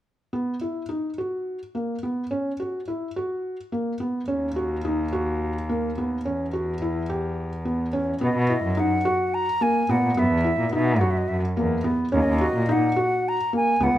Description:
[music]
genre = contemporary instrumental, chamber music in an uneven meter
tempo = 214 BPM (eighths)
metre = 7/8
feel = straight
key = B major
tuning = A4 = 439 Hz
[part]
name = felt-muted upright piano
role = arpeggios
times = 0.3-14.0 s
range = A#3 to G4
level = -25 LUFS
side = equal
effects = none
[part]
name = warm cello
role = bass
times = 4.3-14.0 s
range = C#2 to B2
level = -26 LUFS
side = equal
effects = none
[part]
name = silver concert flute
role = melody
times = 8.2-14.0 s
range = D#5 to A#5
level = -25 LUFS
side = equal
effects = none
[sound]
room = light reverb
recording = close, detailed microphones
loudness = -22 LUFS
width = side -13 dB against mid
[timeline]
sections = 0.3-8.2 A section; 8.2-14.0 B section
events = none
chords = 0.3 Bmaj7; 2.3 F#7sus4; 4.3 D#m; 6.3 Em6; 8.2 Bmaj7; 10.2 F#7sus4; 12.1 D#m7

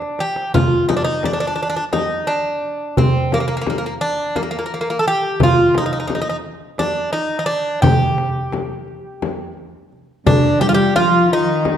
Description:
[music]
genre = Turkish makam ensemble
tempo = 173 BPM (eighths)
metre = 7/8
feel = straight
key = G makam nihavent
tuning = A4 = 440 Hz
[part]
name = Greek bouzouki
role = melody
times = 0.0-11.8 s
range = Bb3 to A4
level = -18 LUFS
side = right 1 dB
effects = none
[part]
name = darbuka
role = percussion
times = 0.0-11.8 s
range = none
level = -20 LUFS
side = right 2 dB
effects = none
[part]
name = frame drum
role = percussion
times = 0.5-11.8 s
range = none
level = -21 LUFS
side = left 4 dB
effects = none
[part]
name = dark kamancheh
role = second line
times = 10.3-11.8 s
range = D4 to G4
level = -21 LUFS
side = left 4 dB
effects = none
[part]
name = warm studio cello section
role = second line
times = 10.3-11.8 s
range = D3 to G3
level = -19 LUFS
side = equal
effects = none
[sound]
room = wet recital hall reverb, RT60 1.5 s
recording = dark, warm production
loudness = -15 LUFS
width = side -9 dB against mid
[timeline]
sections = 0.0-10.3 A section; 10.3-11.8 B section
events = drum fill 0.0-0.5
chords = none

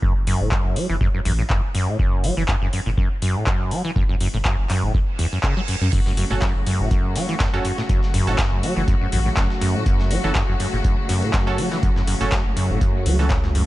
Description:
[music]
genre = acid house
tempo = 122 BPM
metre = 4/4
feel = swing 54% on 16ths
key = F# minor pentatonic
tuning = A4 = 441 Hz
[part]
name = acid bass, saw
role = riff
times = 0.0-13.6 s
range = E2 to F#3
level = -23 LUFS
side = equal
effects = overdrive, lush chorus, cassette tape, tape echo
[part]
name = saturated sub bass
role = bass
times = 0.0-13.6 s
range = F#1 to F#2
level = -23 LUFS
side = equal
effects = tube saturation, sidechain pumping
[part]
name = electronic kick drum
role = drums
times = 0.0-13.4 s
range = none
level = -21 LUFS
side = equal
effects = none
[part]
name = electro analog drum machine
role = drums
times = 0.3-13.7 s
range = crash cymbal, handclaps, hi-hat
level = -28 LUFS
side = left 1 dB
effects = none
[part]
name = reverse cymbal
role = sound effects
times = 5.1-5.9 s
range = none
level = -33 LUFS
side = right 5 dB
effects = none
[part]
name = clear studio string section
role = sustained chords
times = 5.9-13.7 s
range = C#3 to F#4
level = -27 LUFS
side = left 1 dB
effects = vintage 12-bit sampler grit, sidechain pumping
[part]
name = breakbeat sampler-style drum kit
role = drums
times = 5.9-13.7 s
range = hi-hat, snare drum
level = -36 LUFS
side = equal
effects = sidechain pumping on hats, high-pass filter on hats, high-pass filter on snare
[part]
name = band-passed chord stab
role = stabs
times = 6.3-13.3 s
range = C#4 to A4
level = -30 LUFS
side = right 4 dB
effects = chorus, tape echo
[sound]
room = little or no reverb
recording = nothing above 11.0 kHz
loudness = -18 LUFS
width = side -16 dB against mid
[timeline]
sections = 0.0-13.7 A section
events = filter sweep on acid bass 0.0-13.7; reverse cymbal 5.1-5.9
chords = 0.0 F#m

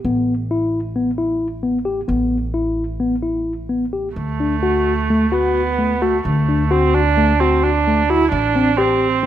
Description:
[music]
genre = contemporary instrumental, chamber music in an uneven meter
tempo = 262 BPM (eighths)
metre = 9/8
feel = straight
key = unclear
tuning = A4 = 440 Hz
[part]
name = upright bass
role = bass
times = 0.0-9.3 s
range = A1 to D2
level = -22 LUFS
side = equal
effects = none
[part]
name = mellow tine electric piano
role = arpeggios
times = 0.1-9.3 s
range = A3 to G4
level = -19 LUFS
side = left 2 dB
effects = none
[part]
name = warm viola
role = second line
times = 4.2-9.3 s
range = A3 to E4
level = -18 LUFS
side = right 6 dB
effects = none
[sound]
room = light reverb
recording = none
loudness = -16 LUFS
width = side -11 dB against mid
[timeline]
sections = 0.0-4.2 A section; 4.2-9.3 B section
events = none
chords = 0.0 Asus2; 4.2 D; 8.3 Am7

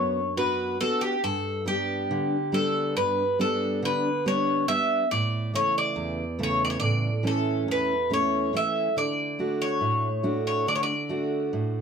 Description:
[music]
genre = greek folk, Greek bouzouki band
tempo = 140 BPM (eighths)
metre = 9/8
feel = straight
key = D major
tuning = A4 = 440 Hz
[part]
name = Greek bouzouki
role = melody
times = 0.0-11.8 s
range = G4 to E5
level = -26 LUFS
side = left 1 dB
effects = none
[part]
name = fingerpicked steel-string acoustic guitar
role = accompaniment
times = 0.0-11.8 s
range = E2 to F#4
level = -27 LUFS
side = right 2 dB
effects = none
[sound]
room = moderate small room reverb, RT60 0.5 s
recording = none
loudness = -23 LUFS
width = side -6 dB against mid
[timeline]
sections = 0.0-11.8 A section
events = none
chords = 0.0 Bm; 1.2 G; 5.1 A; 9.0 D

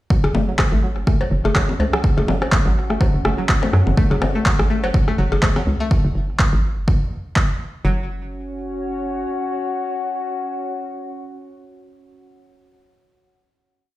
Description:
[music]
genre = minimal techno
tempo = 124 BPM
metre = 4/4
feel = swing 56% on 16ths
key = F# minor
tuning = A4 = 440 Hz
[part]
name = string-like resonator pluck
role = riff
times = 0.1-8.1 s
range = F#3 to A3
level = -25 LUFS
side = left 1 dB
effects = chorus, phaser, sidechain pumping, ping-pong delay
[part]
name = electronic kick drum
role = drums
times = 0.1-7.5 s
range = none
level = -17 LUFS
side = equal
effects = overdrive
[part]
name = warbly tape-like pad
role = texture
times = 0.5-12.4 s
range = C#4 to F#5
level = -28 LUFS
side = left 1 dB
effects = chorus, built-in reverb, sidechain pumping
[part]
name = hollow knocking FM bass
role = bass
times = 0.2-9.3 s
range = F#1 to F#2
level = -20 LUFS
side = equal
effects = sidechain pumping
[part]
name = electronic rim click, cowbell and bongos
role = percussion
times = 0.2-5.6 s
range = none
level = -24 LUFS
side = left 2 dB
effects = ping-pong delay
[part]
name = electronic handclaps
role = drums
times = 0.6-7.5 s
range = none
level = -22 LUFS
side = equal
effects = overdrive
[sound]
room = little or no reverb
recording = played on a big sound system in a bare room, stone room reverb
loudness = -17 LUFS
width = side -16 dB against mid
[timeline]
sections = 0.1-7.8 groove; 7.8-11.7 final chord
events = fade-in on ambient pad 0.1-5.9; filter sweep on synth pluck 0.1-5.9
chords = 0.1 F#5

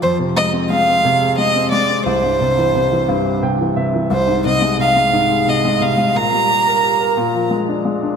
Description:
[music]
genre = pop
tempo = 59 BPM (dotted quarters)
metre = 6/8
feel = straight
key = unclear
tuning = A4 = 440 Hz
[part]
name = clear violin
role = melody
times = 0.0-7.5 s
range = C5 to Bb5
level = -16 LUFS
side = right 1 dB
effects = none
[part]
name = warm concert grand piano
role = accompaniment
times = 0.0-8.2 s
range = C2 to G5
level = -17 LUFS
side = left 1 dB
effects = none
[sound]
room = wet concert hall reverb, RT60 2.1 s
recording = none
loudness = -14 LUFS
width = side -6 dB against mid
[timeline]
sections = 0.0-8.2 A section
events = grand piano fill 3.1-4.1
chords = 0.0 Fm; 2.1 C; 4.1 Fm/C; 6.2 Gm/Bb; 7.2 Bb7

